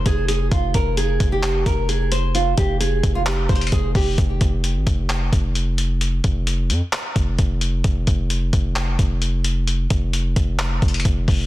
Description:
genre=hip hop, trap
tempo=131 BPM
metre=4/4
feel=half-time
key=F minor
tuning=A4 = 440 Hz
part: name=nylon-string guitar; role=melody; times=0.0-4.2 s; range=F4 to C5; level=-24 LUFS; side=right 2 dB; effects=digital delay
part: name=distorted 808-style bass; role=bass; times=0.0-11.5 s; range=F1 to F2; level=-21 LUFS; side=equal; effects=distortion
part: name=lo-fi sampler-style drum kit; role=drums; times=0.1-11.4 s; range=handclaps, hi-hat, kick drum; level=-21 LUFS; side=equal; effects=none
room=digital ambience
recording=dense, heavily limited modern master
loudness=-18 LUFS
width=side -16 dB against mid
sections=0.0-11.5 A section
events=none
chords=0.0 Fm; 4.2 N.C.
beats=0.06 | 0.52 0.97 1.43 1.89 | 2.35 2.81 3.26 3.72 | 4.18 4.64 5.10 5.55 | 6.01 6.47 6.93 7.39 | 7.84 8.30 8.76 9.22 | 9.68 10.13 10.59 11.05

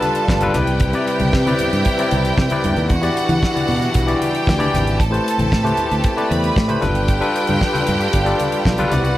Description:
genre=disco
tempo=115 BPM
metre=4/4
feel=straight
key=unclear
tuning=A4 = 440 Hz
part: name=clear studio violin section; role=second line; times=0.0-9.2 s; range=F#4 to B5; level=-22 LUFS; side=right 2 dB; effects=none
part: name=barky tine electric piano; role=accompaniment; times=0.0-9.2 s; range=C3 to D5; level=-20 LUFS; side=left 3 dB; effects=overdrive
part: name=dark studio string section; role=sustained chords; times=0.0-9.2 s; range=C3 to B4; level=-26 LUFS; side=right 1 dB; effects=none
part: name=damped 70s drum kit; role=drums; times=0.0-9.2 s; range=hi-hat, kick drum, snare drum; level=-21 LUFS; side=equal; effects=none
part: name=congas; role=percussion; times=0.0-9.0 s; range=none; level=-27 LUFS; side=left 2 dB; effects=none
part: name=fingered electric bass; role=bass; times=0.3-9.2 s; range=G1 to E3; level=-20 LUFS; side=equal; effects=none
room=light reverb, small room ambience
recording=none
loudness=-15 LUFS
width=side -14 dB against mid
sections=0.0-9.2 A section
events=none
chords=0.0 G7; 0.6 Cmaj7; 2.9 Em9; 5.0 Am9; 6.8 G7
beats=0.29 | 0.81 1.33 1.86 2.38 | 2.90 3.42 3.95 4.47 | 4.99 5.52 6.04 6.56 | 7.08 7.61 8.13 8.65 | 9.18

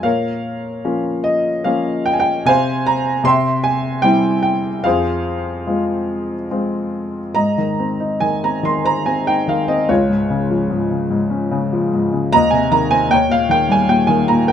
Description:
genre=classical, lyrical solo piano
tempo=69-77 BPM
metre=3/4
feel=rubato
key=F minor, Ab major from 7.4 s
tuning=A4 = 440 Hz
part: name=clear baby grand piano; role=solo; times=0.0-14.5 s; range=Db2 to C6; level=-15 LUFS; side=equal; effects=none
room=light reverb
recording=close, detailed microphones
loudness=-15 LUFS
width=side -9 dB against mid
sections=0.0-7.4 A section; 7.4-14.5 B section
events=none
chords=0.0 Bbm; 2.5 Csus4; 3.2 C; 4.8 Fm; 7.4 Abadd9; 9.9 Db; 12.3 Abadd9/Eb; 13.1 Eb7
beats=| 0.04 0.86 1.66 | 2.46 3.24 4.03 | 4.85 5.67 6.50 | 7.36 8.21 9.06 | 9.90 10.70 11.52 | 12.33 13.12 13.90

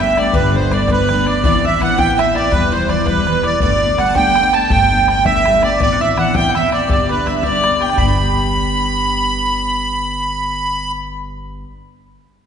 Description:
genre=celtic folk, Celtic jig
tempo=110 BPM (dotted quarters)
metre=6/8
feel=straight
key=G major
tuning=A4 = 441 Hz
part: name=accordion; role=melody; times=0.0-10.9 s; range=B4 to B5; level=-16 LUFS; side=right 3 dB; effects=light tremolo tuning
part: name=bowl-back mandolin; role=second line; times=0.0-11.6 s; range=B4 to B5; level=-26 LUFS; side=right 3 dB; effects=none
part: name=bright fiddle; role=second line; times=0.0-10.9 s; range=B4 to B5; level=-24 LUFS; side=left 4 dB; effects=none
part: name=picked steel-string acoustic guitar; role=accompaniment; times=0.0-11.7 s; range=G2 to G4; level=-21 LUFS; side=left 3 dB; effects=none
part: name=upright bass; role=bass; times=0.0-11.6 s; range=E1 to A1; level=-23 LUFS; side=equal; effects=none
part: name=bodhran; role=percussion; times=0.0-8.2 s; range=none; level=-22 LUFS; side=left 2 dB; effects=none
room=wet concert hall reverb, RT60 2.1 s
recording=recorded in a church or concert hall, nothing above 10.8 kHz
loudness=-13 LUFS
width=side -7 dB against mid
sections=0.0-8.0 A section; 8.0-10.2 B section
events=none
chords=0.0 Gadd9; 1.4 Amadd9; 2.5 Em; 3.6 Gadd9; 5.8 Amadd9; 6.9 G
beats=| 0.35 0.89 | 1.44 1.98 | 2.52 3.07 | 3.61 4.16 | 4.70 5.25 | 5.79 6.34 | 6.88 7.43 | 7.98 8.52 | 9.07 9.62

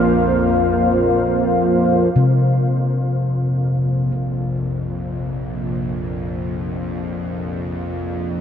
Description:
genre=dark ambient drone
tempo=free time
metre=none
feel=none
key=unclear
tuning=A4 = 441 Hz
part: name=sweeping resonant pad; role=sustained chords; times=0.0-8.4 s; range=Bb3 to F5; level=-20 LUFS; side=right 1 dB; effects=chorus
part: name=bowed-like drone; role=drone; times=0.0-8.4 s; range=Bb1 to F2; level=-23 LUFS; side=left 1 dB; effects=built-in reverb
part: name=gamelan-type bossed gongs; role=arpeggios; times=2.2-8.4 s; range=C3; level=-20 LUFS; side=left 1 dB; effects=ping-pong delay
room=wet huge ambient reverb, RT60 9.3 s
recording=dark, warm production, nothing above 10.7 kHz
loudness=-17 LUFS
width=side -8 dB against mid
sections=0.0-2.2 A section; 2.2-8.4 B section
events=filter sweep on synth drone 0.0-2.2; fade-in on synth drone 2.2-8.4; fade-in on analog synth pad 2.2-8.4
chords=0.0 Bbsus2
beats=free time

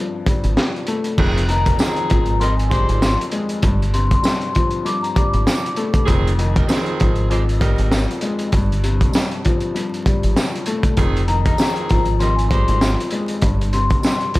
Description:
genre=hip hop, boom-bap hip-hop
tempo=98 BPM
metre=4/4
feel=swing 57% on 16ths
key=F dorian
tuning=A4 = 440 Hz
part: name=dark upright piano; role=accompaniment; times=0.0-14.4 s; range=F2 to A3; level=-24 LUFS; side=left 3 dB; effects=cassette tape, high-pass filter, low-pass filter
part: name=crunchy breakbeat drum kit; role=drums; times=0.3-14.4 s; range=crash cymbal, hi-hat, kick drum, snare drum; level=-19 LUFS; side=equal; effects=none
part: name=deep dub fingered electric bass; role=bass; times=0.4-14.0 s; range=F1 to Ab1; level=-19 LUFS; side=equal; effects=none
part: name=warm saxophone section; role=stabs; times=1.2-13.0 s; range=Eb3 to C5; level=-27 LUFS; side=right 4 dB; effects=high-pass filter, low-pass filter, digital delay
part: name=vibraphone with medium mallets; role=melody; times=1.5-6.0, 11.3-14.4 s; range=Ab5 to D6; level=-23 LUFS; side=left 3 dB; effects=high-pass filter, low-pass filter
part: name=tambourine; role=percussion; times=1.8-14.2 s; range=none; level=-35 LUFS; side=right 6 dB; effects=none
room=small room reverb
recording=vinyl crackle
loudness=-16 LUFS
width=side -19 dB against mid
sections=0.0-1.2 A section; 1.2-14.4 B section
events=none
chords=0.0 G9sus4; 1.2 Fm11; 3.6 G9sus4; 6.1 Fm9; 8.5 G9sus4; 11.0 Fm11; 13.4 Gsus4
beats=0.57 | 1.18 1.79 2.40 3.02 | 3.63 4.24 4.85 5.47 | 6.08 6.69 7.30 7.92 | 8.53 9.14 9.75 10.37 | 10.98 11.59 12.20 12.81 | 13.43 14.04

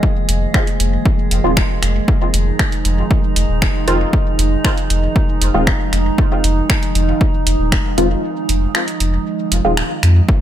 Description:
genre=dub techno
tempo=117 BPM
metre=4/4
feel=straight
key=F minor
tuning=A4 = 440 Hz
part: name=warbly tape-like pad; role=sustained chords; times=0.0-10.4 s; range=Eb3 to Eb4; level=-23 LUFS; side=right 4 dB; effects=chorus, built-in reverb, sidechain pumping
part: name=electronic kick drum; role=drums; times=0.0-10.4 s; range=none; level=-16 LUFS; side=equal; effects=overdrive
part: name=drifting glass-harmonics texture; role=texture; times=0.0-10.3 s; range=Ab3 to Ab4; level=-25 LUFS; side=right 2 dB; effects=chorus, built-in reverb, sidechain pumping
part: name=warm sub bass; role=bass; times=0.3-10.2 s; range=Eb1 to F2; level=-16 LUFS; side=equal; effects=sidechain pumping
part: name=punchy analog drum machine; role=drums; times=0.3-10.1 s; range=finger snaps, hi-hat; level=-21 LUFS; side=right 1 dB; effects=overdrive
part: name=filtered dub chord stab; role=stabs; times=1.4-9.7 s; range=Eb3 to F4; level=-21 LUFS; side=equal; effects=chorus, phaser, sidechain pumping, dub echo
room=little or no reverb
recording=none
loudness=-13 LUFS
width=side -11 dB against mid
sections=0.0-10.3 A section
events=kick drops out 8.2-10.3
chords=0.0 Fm7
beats=| 0.03 0.54 1.05 1.57 | 2.08 2.59 3.11 3.62 | 4.13 4.64 5.16 5.67 | 6.18 6.70 7.21 7.72 | 8.23 8.75 9.26 9.77 | 10.29

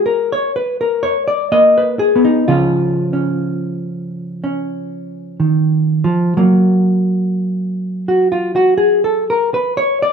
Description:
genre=solo jazz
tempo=62 BPM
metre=4/4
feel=swing 66% on 8ths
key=unclear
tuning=A4 = 440 Hz
part: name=hollow-body jazz guitar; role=solo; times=0.0-10.1 s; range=C#3 to D#5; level=-13 LUFS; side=equal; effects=none
room=wet large studio reverb, RT60 1.3 s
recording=none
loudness=-13 LUFS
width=side -6 dB against mid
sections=0.0-10.1 A section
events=hollow-body jazz guitar solo 0.0-10.1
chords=0.0 G#madd9; 2.5 C#; 6.4 F#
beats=0.54 1.51 | 2.48 3.45 4.42 5.39 | 6.36 7.33 8.30 9.27

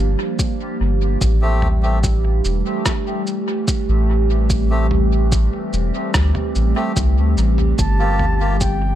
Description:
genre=ambient dub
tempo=73 BPM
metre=4/4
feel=straight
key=unclear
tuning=A4 = 440 Hz
part: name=warbly tape-like pad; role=sustained chords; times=0.0-9.0 s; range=E3 to G4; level=-22 LUFS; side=right 2 dB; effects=chorus, built-in reverb, phaser
part: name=soft dub sub bass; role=bass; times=0.0-9.0 s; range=E1 to D2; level=-17 LUFS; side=equal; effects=none
part: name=electronic kick drum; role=drums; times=0.4-8.8 s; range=none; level=-21 LUFS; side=equal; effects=overdrive
part: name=lo-fi sampler-style drum kit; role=drums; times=0.4-8.8 s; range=cabasa, rim click, toms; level=-25 LUFS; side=equal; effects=dub echo
part: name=melodica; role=stabs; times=1.4-8.6 s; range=A3 to G4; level=-28 LUFS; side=left 2 dB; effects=dub echo
part: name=mellow silver concert flute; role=melody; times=7.8-9.0 s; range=G5 to A5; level=-24 LUFS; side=right 1 dB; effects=none
room=digital ambience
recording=echo-heavy mix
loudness=-16 LUFS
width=side -12 dB against mid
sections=0.0-9.0 A section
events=none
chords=0.0 Gm7; 1.2 Am7; 7.8 Gm7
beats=0.39 | 1.21 2.03 2.85 3.68 | 4.50 5.32 6.14 6.96 | 7.79 8.61

